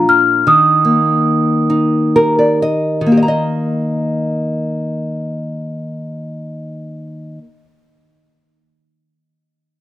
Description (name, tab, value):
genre	children's music, lullaby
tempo	37-54 BPM (dotted quarters)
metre	6/8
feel	rubato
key	Eb major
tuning	A4 = 440 Hz
part	large celesta	melody	0.0-2.1 s	Bb5 to F6	-12 LUFS	right 1 dB	none
part	nylon-string guitar	accompaniment	0.0-7.7 s	Bb2 to Bb5	-15 LUFS	equal	none
room	light reverb, studio reverb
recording	dry, close 1970s-style studio recording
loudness	-12 LUFS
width	side -14 dB against mid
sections	0.0-3.2 A section; 3.2-9.4 B section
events	slowing down 0.0-3.2; nylon-string guitar fill 1.7-3.2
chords	0.5 Eb; 3.2 Eb5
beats	| 0.47 1.70 | 3.16 4.74 | 6.29